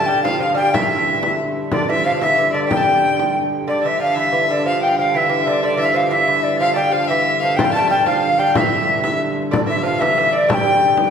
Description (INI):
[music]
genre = medieval dance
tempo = 123 BPM (dotted quarters)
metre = 6/8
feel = straight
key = unclear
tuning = A4 = 440 Hz
[part]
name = mellow tenor recorder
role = melody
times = 0.0-11.1 s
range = D5 to A5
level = -17 LUFS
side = left 1 dB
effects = none
[part]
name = lute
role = second line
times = 0.0-11.1 s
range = D3 to A3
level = -23 LUFS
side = right 4 dB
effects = none
[part]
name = rich fiddle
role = second line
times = 0.0-11.1 s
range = D5 to A5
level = -23 LUFS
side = left 3 dB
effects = none
[part]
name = dark hurdy-gurdy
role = drone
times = 0.0-11.1 s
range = G2 to D3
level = -25 LUFS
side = equal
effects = none
[part]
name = frame drum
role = percussion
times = 0.2-3.4, 7.6-11.1 s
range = none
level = -23 LUFS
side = left 2 dB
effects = none
[sound]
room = wet concert hall reverb, RT60 2.0 s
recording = recorded in a church or concert hall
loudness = -15 LUFS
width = side -7 dB against mid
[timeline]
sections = 0.0-3.7 A section; 3.7-11.1 A section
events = none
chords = none